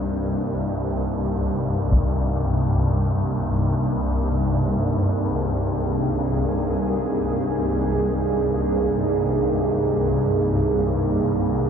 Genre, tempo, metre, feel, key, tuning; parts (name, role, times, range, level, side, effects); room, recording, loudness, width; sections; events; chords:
dark ambient drone; free time; A4 = 439 Hz
deep dark ambient pad; sustained chords; 0.0-11.7 s; C3 to Ab4; -24 LUFS; right 2 dB; chorus, built-in reverb
swarming drone; drone; 0.0-11.7 s; C2 to G2; -22 LUFS; left 1 dB; built-in reverb, phaser
taiko ensemble; percussion; 1.9-2.1 s; -22 LUFS; equal
wet huge ambient reverb, RT60 7.5 s; nothing above 10.8 kHz; -20 LUFS; side -7 dB against mid
0.0-11.7 A section
fade-in on ambient pad 0.0-11.7; filter sweep on synth drone 0.0-11.7
0.0 Cm; 1.9 Abmaj9/C